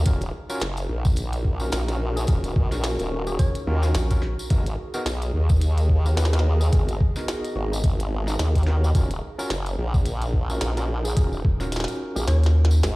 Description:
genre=glitch hop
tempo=108 BPM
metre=4/4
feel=swing 58% on 16ths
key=unclear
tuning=A4 = 440 Hz
part: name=woody wave-folded pluck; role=melody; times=0.0-12.8 s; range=D#4 to C#5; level=-36 LUFS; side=equal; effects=chorus, digital delay
part: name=formant-sweep wobble bass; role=bass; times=0.0-13.0 s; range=D#1 to D#2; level=-23 LUFS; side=equal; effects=chorus
part: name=warbly tape-like pad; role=texture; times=0.0-13.0 s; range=D#4 to D#5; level=-36 LUFS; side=right 1 dB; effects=chorus, built-in reverb, sidechain pumping
part: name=overdriven tine electric piano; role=stabs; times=0.1-13.0 s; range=B3 to A#4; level=-33 LUFS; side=equal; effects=fast tremolo, sidechain pumping, digital delay
part: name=electronic kick drum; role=drums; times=0.1-11.6 s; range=none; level=-21 LUFS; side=equal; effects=none
part: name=glitchy drum kit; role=drums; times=0.1-13.0 s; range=hi-hat, snare drum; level=-31 LUFS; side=equal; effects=overdrive
part: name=tambourine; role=percussion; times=0.1-13.0 s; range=none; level=-39 LUFS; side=left 2 dB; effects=none
part: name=rubbery square bass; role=bass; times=4.0-4.4, 11.4-12.8 s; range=D#1 to D#2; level=-19 LUFS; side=equal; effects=tube saturation
room=little or no reverb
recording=played on a big sound system in a bare room, stone room reverb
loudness=-20 LUFS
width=side -21 dB against mid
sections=0.0-13.0 A section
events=kick drops out 12.3-13.0; drum fill 12.3-13.0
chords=0.1 D#m7; 4.5 G#m7; 8.9 D#m7

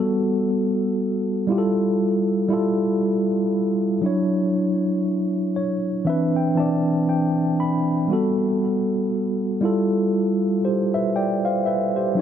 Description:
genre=R&B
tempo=59 BPM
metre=4/4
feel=swing 58% on 16ths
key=unclear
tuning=A4 = 441 Hz
part: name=mellow tine electric piano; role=solo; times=0.0-12.2 s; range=E3 to B5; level=-19 LUFS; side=equal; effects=fast stereo tremolo, tape echo
room=light reverb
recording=dark, warm production, nothing above 7.9 kHz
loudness=-19 LUFS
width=side -9 dB against mid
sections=0.0-12.2 A section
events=tine electric piano fill 5.1-8.1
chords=0.0 Gmaj9; 1.5 Fmaj9; 4.0 Dmaj9; 6.1 Cmaj9; 8.1 Gmaj9; 9.6 Fmaj9

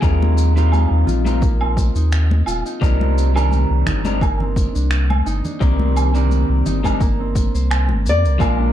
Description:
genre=sunset chillout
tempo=86 BPM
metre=4/4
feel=swing 54% on 16ths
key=C minor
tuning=A4 = 440 Hz
part: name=electric guitar at the edge of break-up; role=accompaniment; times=0.0-8.7 s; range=Eb3 to D5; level=-23 LUFS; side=moving between left 4 dB and right 3 dB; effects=auto-pan, tape echo
part: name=concert harp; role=arpeggios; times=0.0-8.7 s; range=Bb3 to C5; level=-27 LUFS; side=right 2 dB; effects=low-pass filter, tape echo
part: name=warm sub bass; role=bass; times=0.0-8.7 s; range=Eb1 to F2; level=-17 LUFS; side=equal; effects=none
part: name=electronic kick drum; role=drums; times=0.0-8.6 s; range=none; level=-19 LUFS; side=equal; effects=none
part: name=shaker, woodblock and finger snaps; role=drums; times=0.0-8.6 s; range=none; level=-26 LUFS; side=right 4 dB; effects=none
part: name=congas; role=percussion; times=0.2-8.0 s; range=none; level=-28 LUFS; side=left 3 dB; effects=none
part: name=nylon-string guitar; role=melody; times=8.1-8.7 s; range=D5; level=-21 LUFS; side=left 4 dB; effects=vintage 12-bit sampler grit
room=small room reverb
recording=dark, warm production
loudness=-15 LUFS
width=side -11 dB against mid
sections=0.0-8.4 A section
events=none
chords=0.0 Eb69; 2.8 Cm9

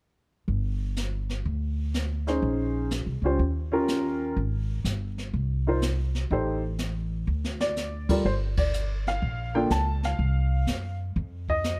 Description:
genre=jazz piano trio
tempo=124 BPM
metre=4/4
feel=swing 67% on 8ths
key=G minor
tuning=A4 = 440 Hz
part: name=upright bass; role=bass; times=0.5-11.8 s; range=G1 to F#2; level=-30 LUFS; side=equal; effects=none
part: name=jazz brush drum kit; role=drums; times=0.5-11.8 s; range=brushed snare drum, crash cymbal, hi-hat, kick drum, ride cymbal, snare drum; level=-34 LUFS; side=equal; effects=none
part: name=warm upright piano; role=melody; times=2.3-11.8 s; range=G3 to A5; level=-30 LUFS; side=equal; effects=plate reverb
room=light reverb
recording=dark, warm production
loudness=-28 LUFS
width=mono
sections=0.5-8.2 A section; 8.2-11.8 B section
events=drum fill 7.3-7.8; band accent 8.5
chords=0.5 G5; 2.4 Bbm11; 3.4 Eb9; 4.4 Ab; 6.3 Am7b5; 7.3 N.C.; 8.2 Gm9; 10.2 Csus4; 11.2 F7(no3)

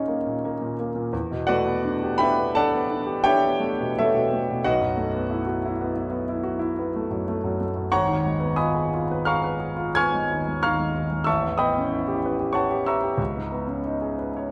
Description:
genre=classical, impressionist solo piano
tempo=89 BPM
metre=5/4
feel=uneven beats, rubato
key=G# minor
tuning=A4 = 442 Hz
part: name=clear grand piano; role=solo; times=0.0-14.5 s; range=G#1 to G#6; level=-24 LUFS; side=equal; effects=none
room=moderate recital hall reverb, RT60 1.4 s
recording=dark, warm production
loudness=-24 LUFS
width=mono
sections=0.0-14.5 A section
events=none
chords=0.0 D#7sus4; 1.1 Em11; 4.6 B7sus4; 7.9 G#m6; 11.3 A9; 13.2 C#m9

